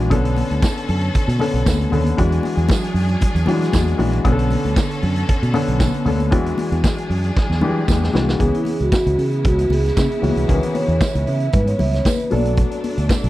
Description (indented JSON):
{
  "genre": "disco",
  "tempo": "116 BPM",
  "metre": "4/4",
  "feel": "straight",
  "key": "unclear",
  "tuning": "A4 = 435 Hz",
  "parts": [
    { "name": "warm grand piano", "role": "accompaniment", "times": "0.0-13.3 s", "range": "D3 to A4", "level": "-23 LUFS", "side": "left 2 dB", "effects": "none" },
    { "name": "clear symphonic string section", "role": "sustained chords", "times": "0.0-13.3 s", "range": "B2 to A4", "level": "-28 LUFS", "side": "right 1 dB", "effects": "none" },
    { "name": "fingered electric bass", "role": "bass", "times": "0.0-13.3 s", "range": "A#1 to E3", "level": "-19 LUFS", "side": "equal", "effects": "none" },
    { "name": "vintage drum kit", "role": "drums", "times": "0.1-13.3 s", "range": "hi-hat, kick drum, snare drum", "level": "-20 LUFS", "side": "equal", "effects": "none" },
    { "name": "congas", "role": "percussion", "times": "0.4-13.2 s", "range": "none", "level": "-26 LUFS", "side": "left 4 dB", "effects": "none" },
    { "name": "tambourine", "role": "percussion", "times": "0.6-13.2 s", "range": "none", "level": "-35 LUFS", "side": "right 18 dB", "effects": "none" },
    { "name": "vibraphone with soft mallets", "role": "melody", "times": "8.4-12.4 s", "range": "E4 to E5", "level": "-22 LUFS", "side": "right 2 dB", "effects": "none" }
  ],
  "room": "little or no reverb",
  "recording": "dry, close 1970s-style studio recording",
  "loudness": "-16 LUFS",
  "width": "side -16 dB against mid",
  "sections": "0.0-8.4 A section; 8.4-13.3 B section",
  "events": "drum fill 7.4-8.4; vibraphone solo 8.4-13.3",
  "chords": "0.1 Bm9; 2.2 E9; 4.2 Bm9; 6.3 E9; 8.4 C#m7; 12.3 Bm7"
}